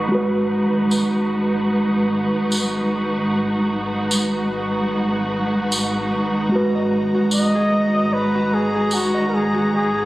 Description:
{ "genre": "trip hop", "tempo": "75 BPM", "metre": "4/4", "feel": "swing 57% on 16ths", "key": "G# minor", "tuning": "A4 = 439 Hz", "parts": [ { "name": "mellow tine electric piano", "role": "accompaniment", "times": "0.0-10.1 s", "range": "G#3 to B4", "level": "-20 LUFS", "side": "right 1 dB", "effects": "tremolo, tape echo" }, { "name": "dark chamber string section", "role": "sustained chords", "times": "0.0-10.1 s", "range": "G#3 to A#5", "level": "-23 LUFS", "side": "equal", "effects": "vintage 12-bit sampler grit, low-pass filter" }, { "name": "dark detuned saw bass", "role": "bass", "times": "0.0-10.1 s", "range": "G#1", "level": "-33 LUFS", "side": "equal", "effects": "tube saturation" }, { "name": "tambourine", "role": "percussion", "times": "0.9-9.1 s", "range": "none", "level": "-24 LUFS", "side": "equal", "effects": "none" }, { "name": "Celtic harp", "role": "arpeggios", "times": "6.8-10.1 s", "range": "F#4 to D#5", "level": "-28 LUFS", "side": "left 4 dB", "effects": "vintage 12-bit sampler grit, tape echo" }, { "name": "trumpet with bucket mute", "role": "melody", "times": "7.3-10.1 s", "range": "F#4 to D#5", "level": "-21 LUFS", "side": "equal", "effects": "tape echo" } ], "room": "light reverb, studio reverb", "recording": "recorded on a phone in the room, compression", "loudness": "-17 LUFS", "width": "side -17 dB against mid", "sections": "0.0-10.1 A section", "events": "none", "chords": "0.0 G#m7", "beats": "| 0.12 0.92 1.72 2.52 | 3.32 4.12 4.92 5.72 | 6.52 7.32 8.12 8.92 | 9.72" }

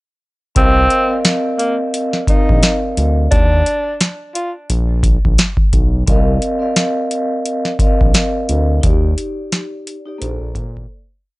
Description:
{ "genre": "hip hop, boom-bap hip-hop", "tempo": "87 BPM", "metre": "4/4", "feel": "swing 56% on 16ths", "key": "C dorian", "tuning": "A4 = 439 Hz", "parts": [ { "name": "breathy tenor saxophone", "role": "melody", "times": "0.6-4.5 s", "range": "Bb3 to F4", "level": "-18 LUFS", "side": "equal", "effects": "high-pass filter, low-pass filter" }, { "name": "vibraphone with soft mallets", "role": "accompaniment", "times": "0.6-10.9 s", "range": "Bb3 to F5", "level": "-19 LUFS", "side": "equal", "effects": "high-pass filter, low-pass filter" }, { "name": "smooth gliding synth bass", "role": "bass", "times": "0.6-10.9 s", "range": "Bb1 to Bb2", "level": "-16 LUFS", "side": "equal", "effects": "tube saturation" }, { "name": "booming analog drum machine", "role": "drums", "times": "0.6-10.9 s", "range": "hi-hat, kick drum, snare drum", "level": "-15 LUFS", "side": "equal", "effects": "none" } ], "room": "little or no reverb", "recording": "dry, gritty hardware recording, transformer saturation, nothing above 10.8 kHz", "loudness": "-13 LUFS", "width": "side -21 dB against mid", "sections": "0.6-11.4 verse", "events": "fade-out 8.8-11.4; break 10.9-11.4", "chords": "0.6 Cm11; 3.3 N.C.; 6.1 Cm11; 8.8 Ebmaj7; 10.2 Bbmaj9", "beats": "| 0.56 1.25 1.94 2.63 | 3.32 4.01 4.70 5.39 | 6.08 6.76 7.46 8.14 | 8.83 9.52 10.21" }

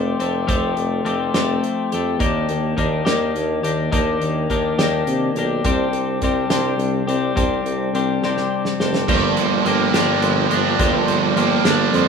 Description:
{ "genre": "indie rock", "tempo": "70 BPM (dotted quarters)", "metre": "6/8", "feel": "straight", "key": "G minor", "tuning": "A4 = 440 Hz", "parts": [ { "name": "twelve-string electric guitar", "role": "riff", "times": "0.0-12.1 s", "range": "G2 to G4", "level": "-20 LUFS", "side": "left 6 dB", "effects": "spring reverb" }, { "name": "warm tuba", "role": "bass", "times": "0.0-12.1 s", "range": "F1 to C3", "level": "-22 LUFS", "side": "right 2 dB", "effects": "none" }, { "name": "loose indie drum kit", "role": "drums", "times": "0.2-12.1 s", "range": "crash cymbal, hi-hat, kick drum, snare drum", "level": "-24 LUFS", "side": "right 1 dB", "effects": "none" }, { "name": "distorted electric guitar", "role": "riff", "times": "9.1-12.1 s", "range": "G2 to D4", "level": "-18 LUFS", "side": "right 13 dB", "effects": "overdrive, analog chorus" } ], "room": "little or no reverb", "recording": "rough home demo mix, studio ambience", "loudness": "-17 LUFS", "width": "side -6 dB against mid", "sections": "0.0-9.1 A section; 9.1-12.1 B section", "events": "drum fill 8.2-9.1", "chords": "0.0 Fadd9; 2.2 Ebmaj7; 5.6 Csus2; 9.1 Gm7", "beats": "| 0.48 1.34 | 2.20 3.06 | 3.93 4.79 | 5.65 6.50 | 7.36 8.22 | 9.08 9.94 | 10.79 11.65" }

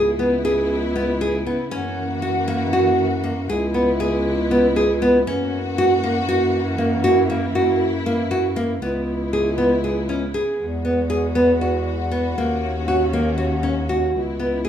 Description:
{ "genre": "contemporary instrumental, chamber music in an uneven meter", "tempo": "237 BPM (eighths)", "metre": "7/8", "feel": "straight", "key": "C# dorian", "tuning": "A4 = 440 Hz", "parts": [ { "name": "warm studio string section", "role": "sustained chords", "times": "0.0-14.7 s", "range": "C#3 to F#4", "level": "-26 LUFS", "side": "left 2 dB", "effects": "none" }, { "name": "nylon-string guitar", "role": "arpeggios", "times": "0.0-14.7 s", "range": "A#3 to G#4", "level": "-20 LUFS", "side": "equal", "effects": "none" }, { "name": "mellow bass clarinet", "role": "bass", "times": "0.0-14.7 s", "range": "C#2 to F#2", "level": "-24 LUFS", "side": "equal", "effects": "none" } ], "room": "light reverb", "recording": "minimal, uncompressed stereo recording", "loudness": "-18 LUFS", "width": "side -9 dB against mid", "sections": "0.0-8.8 A section; 8.8-14.7 B section", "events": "none", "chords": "0.0 C#m7; 1.7 F#7; 3.5 C#m7; 5.3 F#7; 8.8 C#m7; 10.6 Eadd9; 12.4 D#m7; 14.1 C#m7", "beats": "0.20 0.45 0.70 0.96 1.21 1.47 | 1.72 1.97 2.23 2.48 2.73 2.99 3.24 | 3.50 3.75 4.00 4.26 4.51 4.76 5.02 | 5.27 5.53 5.78 6.03 6.29 6.54 6.79 | 7.05 7.30 7.55 7.81 8.06 8.32 8.57 | 8.82 9.08 9.33 9.58 9.84 10.09 10.34 | 10.60 10.85 11.11 11.36 11.61 11.87 12.12 | 12.37 12.62 12.88 13.13 13.38 13.64 13.89 | 14.14 14.40 14.65" }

